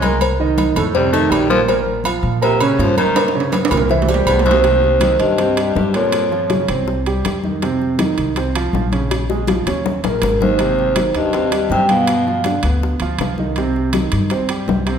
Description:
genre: Afro-Cuban jazz.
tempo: 162 BPM.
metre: 4/4.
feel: straight.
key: C minor from 4.6 s.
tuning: A4 = 440 Hz.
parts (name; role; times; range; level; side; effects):
growling baritone saxophone; second line; 0.0-6.7, 10.0-12.6 s; Db2 to A3; -21 LUFS; left 5 dB; none.
warm grand piano; accompaniment; 0.0-15.0 s; A2 to Bb5; -20 LUFS; right 4 dB; none.
upright bass; bass; 0.0-15.0 s; Ab1 to Bb2; -22 LUFS; equal; none.
agogo bells and timbales; percussion; 0.0-15.0 s; none; -24 LUFS; right 4 dB; none.
congas; percussion; 0.0-14.9 s; none; -25 LUFS; left 3 dB; none.
cowbell and bongos; percussion; 0.0-14.9 s; none; -25 LUFS; left 6 dB; none.
vibraphone with soft mallets; melody; 4.1-6.7, 10.0-12.6 s; Bb4 to G5; -18 LUFS; right 1 dB; none.
room: wet recital hall reverb, RT60 1.4 s.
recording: recorded in a church or concert hall.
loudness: -14 LUFS.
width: side -7 dB against mid.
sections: 0.0-4.6 A section; 4.6-15.0 B section.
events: baritone saxophone solo 0.0-4.6; drum fill 3.2-4.6, 9.1-10.6.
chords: 0.2 Cm7; 1.0 F5; 1.7 Bbm; 3.2 Gdim; 3.9 C; 4.6 Cm7; 6.1 Gm7b5; 6.9 C5; 7.6 F5; 9.1 Bbm7; 9.8 Eb5; 10.6 Abmaj7; 12.1 G7; 13.6 Cm.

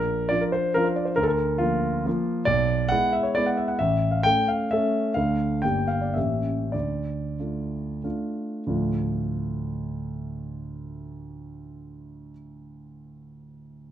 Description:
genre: classical, romantic triple-time dance for piano with dotted rhythms.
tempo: 88-150 BPM.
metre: 3/4.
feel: rubato.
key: D minor.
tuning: A4 = 440 Hz.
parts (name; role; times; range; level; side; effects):
warm grand piano; solo; 0.0-13.9 s; G1 to G5; -23 LUFS; equal; none.
room: light reverb.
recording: dark, warm production.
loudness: -22 LUFS.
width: side -10 dB against mid.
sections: 0.0-8.7 A section; 8.7-12.3 B section.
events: slowing down 4.5-8.7.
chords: 0.0 Bb; 1.2 Bb/D; 2.5 E7/B; 3.8 A; 5.2 Dm; 5.6 Gm; 6.2 A7b9; 6.7 Dm.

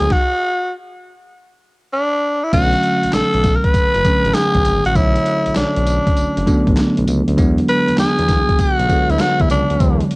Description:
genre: R&B, new jack swing.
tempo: 99 BPM.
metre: 4/4.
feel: swing 66% on 16ths.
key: B dorian.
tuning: A4 = 435 Hz.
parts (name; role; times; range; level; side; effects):
growling tenor saxophone; melody; 0.0-10.1 s; D4 to B4; -17 LUFS; equal; cassette tape.
bell-like tine electric piano; accompaniment; 0.0-10.2 s; D3 to C#5; -18 LUFS; right 1 dB; phaser, cassette tape.
smooth synth bass; bass; 0.0-10.0 s; F#1 to E2; -21 LUFS; equal; none.
dusty soul sampler-style drum kit; drums; 0.0-10.2 s; crash cymbal, handclaps, hi-hat, kick drum, snare drum, tambourine; -18 LUFS; equal; cassette tape.
room: light reverb.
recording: home recording on cassette.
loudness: -13 LUFS.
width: side -27 dB against mid.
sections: 0.0-2.5 A section; 2.5-10.2 B section.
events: stop 0.1-2.5.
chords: 0.0 E9 (rootless); 2.5 Bm9; 7.4 E9.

